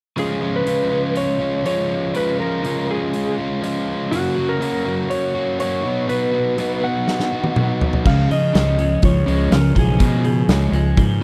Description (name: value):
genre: indie rock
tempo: 122 BPM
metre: 4/4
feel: straight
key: unclear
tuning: A4 = 439 Hz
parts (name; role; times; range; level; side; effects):
- lightly driven lead guitar; melody; 0.2-11.2 s; F#4 to F#5; -25 LUFS; equal; slapback echo
- overdriven electric guitar; riff; 0.2-11.2 s; F#2 to F#4; -24 LUFS; equal; none
- big rock drum kit; drums; 0.2-11.1 s; crash cymbal, hi-hat, kick drum, snare drum, toms; -22 LUFS; equal; none
- electric guitar at the edge of break-up; riff; 8.1-11.2 s; C#3 to C#4; -26 LUFS; equal; lush chorus, slapback echo
- fuzz fingered electric bass; bass; 8.1-11.2 s; B1 to C#3; -21 LUFS; equal; overdrive
room: light reverb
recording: dry, close 1970s-style studio recording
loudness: -19 LUFS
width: mono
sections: 0.2-8.1 A section; 8.1-11.2 B section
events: drum fill 7.1-8.1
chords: 0.2 C#; 4.1 F#; 5.8 B; 8.1 C#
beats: | 0.17 0.66 1.16 1.65 | 2.15 2.64 3.13 3.63 | 4.12 4.61 5.11 5.60 | 6.09 6.58 7.08 7.57 | 8.06 8.55 9.04 9.52 | 10.01 10.50 10.99